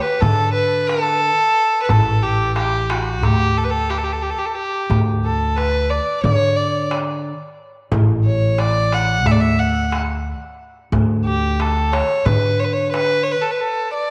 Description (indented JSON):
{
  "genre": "Turkish makam ensemble",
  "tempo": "179 BPM (eighths)",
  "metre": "9/8",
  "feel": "straight",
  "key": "D makam rast",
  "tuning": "A4 = 440 Hz",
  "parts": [
    { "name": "warm violin", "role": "melody", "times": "0.0-14.1 s", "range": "F#4-22c to F#5", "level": "-21 LUFS", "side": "equal", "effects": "none" },
    { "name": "upright bass", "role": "bass", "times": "0.2-13.3 s", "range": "A1 to D3", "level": "-23 LUFS", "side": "equal", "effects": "none" },
    { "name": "darbuka", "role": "percussion", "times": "0.2-13.1 s", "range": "none", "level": "-24 LUFS", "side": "equal", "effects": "none" }
  ],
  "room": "moderate plate reverb, RT60 2.5 s",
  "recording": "none",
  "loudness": "-18 LUFS",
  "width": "mono",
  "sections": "0.0-14.1 A section",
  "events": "none",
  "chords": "none"
}